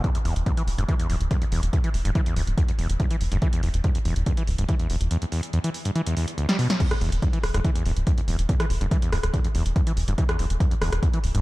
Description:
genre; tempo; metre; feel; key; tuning
driving peak-time techno; 142 BPM; 4/4; straight; E minor; A4 = 440 Hz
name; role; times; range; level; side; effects
overdriven acid bass; riff; 0.0-11.4 s; D2 to G3; -27 LUFS; equal; sidechain pumping
electronic kick drum; drums; 0.0-11.1 s; none; -24 LUFS; equal; none
punchy analog drum machine; drums; 0.0-11.4 s; crash cymbal, hi-hat, rim click, snare drum; -32 LUFS; equal; sidechain pumping on hats, sidechain pumping on cymbals
tight sequencer bass; bass; 0.2-11.4 s; D1 to E1; -24 LUFS; equal; sidechain pumping
room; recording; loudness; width
little or no reverb; dark, warm production; -21 LUFS; side -20 dB against mid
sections
0.0-11.4 A section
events
filter sweep on acid bass 0.0-11.4; kick drops out 5.1-6.8; drum fill 6.5-6.8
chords
none

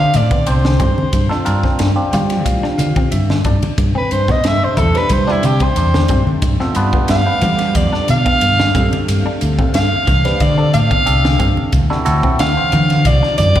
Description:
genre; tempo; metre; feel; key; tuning
electric jazz fusion; 91 BPM; 4/4; straight; G mixolydian; A4 = 444 Hz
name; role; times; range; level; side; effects
mellow soprano saxophone; melody; 0.0-13.6 s; E4 to F5; -17 LUFS; right 1 dB; slapback echo
bell-like tine electric piano; accompaniment; 0.0-13.6 s; E3 to G5; -22 LUFS; right 1 dB; fast stereo tremolo, phaser, slapback echo
clean electric guitar; stabs; 0.0-13.6 s; E3 to F4; -25 LUFS; left 2 dB; ensemble chorus, slapback echo
fingered electric bass; bass; 0.0-13.6 s; C2 to G3; -16 LUFS; equal; none
crisp fusion drum kit; drums; 0.1-13.6 s; hi-hat, kick drum, ride cymbal, snare drum; -18 LUFS; equal; none
congas; percussion; 0.1-13.6 s; none; -22 LUFS; left 1 dB; slapback echo
phased analog pad; sustained chords; 3.8-13.6 s; C3 to F5; -28 LUFS; equal; phaser, chorus
room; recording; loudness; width
light reverb; live gig heard through the venue's PA, recital hall reverb; -12 LUFS; side -11 dB against mid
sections
0.0-13.6 A section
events
soprano saxophone solo 0.0-13.6; tine electric piano fill 1.8-3.8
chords
0.0 Cmaj7sus2; 1.1 Bbadd9/G; 3.8 Am11; 6.4 G7; 8.7 F6; 11.7 D9

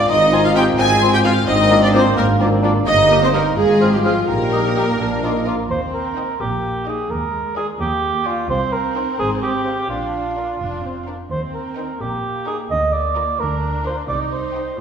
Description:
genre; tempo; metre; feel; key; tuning
cinematic, playful, whimsical film cue; 86 BPM (dotted quarters); 6/8; straight; Eb major; A4 = 440 Hz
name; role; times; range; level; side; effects
rich studio violin section; melody; 0.0-14.7 s; F4 to Bb5; -24 LUFS; left 4 dB; none
rich studio viola section; accompaniment; 0.0-14.8 s; Ab3 to Ab5; -22 LUFS; right 1 dB; none
warm bassoon; accompaniment; 0.0-5.7 s; Bb3 to G4; -23 LUFS; right 1 dB; none
rich studio cello section; bass; 0.0-14.8 s; C2 to Ab4; -26 LUFS; right 1 dB; none
warm French horn section; sustained chords; 0.1-5.5 s; F3 to F4; -24 LUFS; left 2 dB; none
mellow tuba; bass; 0.1-5.6 s; G1 to Bb1; -22 LUFS; right 1 dB; none
warm studio double bass section; bass; 0.1-14.6 s; F1 to Eb2; -25 LUFS; right 1 dB; none
clear clarinet; second line; 0.3-5.6 s; F4 to Ab4; -28 LUFS; left 3 dB; none
dark cor anglais; second line; 0.3-14.8 s; F4 to Ab5; -23 LUFS; right 2 dB; none
mellow large flute ensemble; second line; 0.3-5.5 s; C6 to F6; -28 LUFS; left 2 dB; none
rich studio violin section; second line; 0.3-14.7 s; Bb3 to Eb5; -29 LUFS; left 2 dB; none
room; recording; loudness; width
wet recital hall reverb, RT60 1.4 s; recorded in a church or concert hall; -16 LUFS; side -7 dB against mid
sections
0.0-5.7 A section; 5.7-14.8 B section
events
none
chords
0.1 Fm7/Ab; 1.5 Bb7/Ab; 2.9 Eb/G; 3.6 Fm/Ab; 4.3 Eb/Bb; 5.0 Bb; 5.7 Eb; 7.1 Bb7/Eb; 8.5 Cm; 9.2 Fm/Ab; 9.9 Bb; 11.3 Eb; 12.7 Bb/D; 14.1 Cm

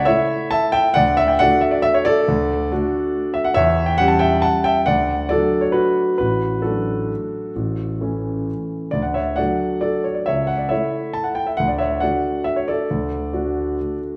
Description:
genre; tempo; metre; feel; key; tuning
classical, piano waltz; 125-146 BPM; 3/4; rubato; D major; A4 = 440 Hz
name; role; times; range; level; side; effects
warm concert grand piano; solo; 0.0-14.2 s; A1 to A5; -20 LUFS; equal; none
room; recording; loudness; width
wet recital hall reverb, RT60 1.6 s; none; -20 LUFS; mono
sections
0.0-14.2 A section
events
none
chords
0.0 A/C#; 1.0 D; 3.6 C#dim/E; 4.9 D; 6.2 D/A; 7.6 A; 8.9 D; 10.3 A/C#; 11.6 D

